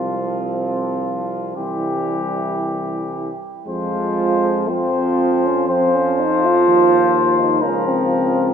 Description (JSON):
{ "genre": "classical, hymn-like piece for brass band", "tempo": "56-64 BPM", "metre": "4/4", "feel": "rubato", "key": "F minor", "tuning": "A4 = 441 Hz", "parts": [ { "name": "mellow flugelhorn", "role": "melody", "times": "0.0-8.5 s", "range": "F4 to C5", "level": "-22 LUFS", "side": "left 4 dB", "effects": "none" }, { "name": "warm French horn section", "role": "second line", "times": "0.0-8.5 s", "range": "C4 to F4", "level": "-26 LUFS", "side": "right 7 dB", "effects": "none" }, { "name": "bright trombone", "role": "accompaniment", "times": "0.0-8.5 s", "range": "E3 to F3", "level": "-25 LUFS", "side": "right 3 dB", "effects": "none" }, { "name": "warm euphonium", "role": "accompaniment", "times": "0.0-8.5 s", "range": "G3 to F4", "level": "-20 LUFS", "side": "equal", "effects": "none" }, { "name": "clear tuba", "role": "bass", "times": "0.0-8.5 s", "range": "C2 to F2", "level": "-25 LUFS", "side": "equal", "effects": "none" } ], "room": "wet church reverb, RT60 3.2 s", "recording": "none", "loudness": "-16 LUFS", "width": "side -7 dB against mid", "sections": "0.0-3.7 A section; 3.7-8.5 B section", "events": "none", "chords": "0.0 Csus4; 1.6 C; 3.7 Fm; 7.6 Bbm/Db" }